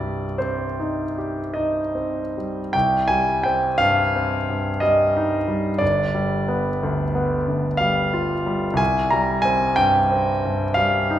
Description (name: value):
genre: classical, romantic nocturne for solo piano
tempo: 48-63 BPM (dotted quarters)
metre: 9/8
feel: rubato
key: C minor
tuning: A4 = 440 Hz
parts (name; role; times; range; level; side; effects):
- bright grand piano; solo; 0.0-11.2 s; G1 to Bb5; -19 LUFS; equal; none
room: wet recital hall reverb, RT60 1.6 s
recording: recorded in a church or concert hall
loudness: -19 LUFS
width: side -11 dB against mid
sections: 0.0-2.7 A section; 2.7-11.2 B section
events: none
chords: 0.0 Cm; 5.8 G7; 8.8 C5